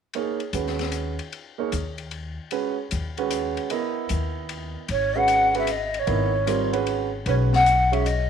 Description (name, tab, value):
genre	modal jazz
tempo	151 BPM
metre	3/4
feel	swing 66% on 8ths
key	G# minor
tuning	A4 = 441 Hz
part	warm grand piano	accompaniment	0.1-8.0 s	G3 to D#5	-27 LUFS	right 8 dB	none
part	open jazz drum kit	drums	0.1-8.2 s	hi-hat, ride cymbal, snare drum	-35 LUFS	left 9 dB	none
part	upright bass	bass	0.5-8.3 s	G#1 to D#2	-27 LUFS	left 2 dB	none
part	breathy mellow jazz flute	melody	4.9-8.3 s	C#5 to F#5	-21 LUFS	left 1 dB	none
room	wet spring reverb, RT60 1.2 s, small room ambience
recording	1960s-style stereo with parts hard left and right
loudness	-21 LUFS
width	side -8 dB against mid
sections	0.1-4.9 A section; 4.9-8.3 B section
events	none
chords	0.1 G#m11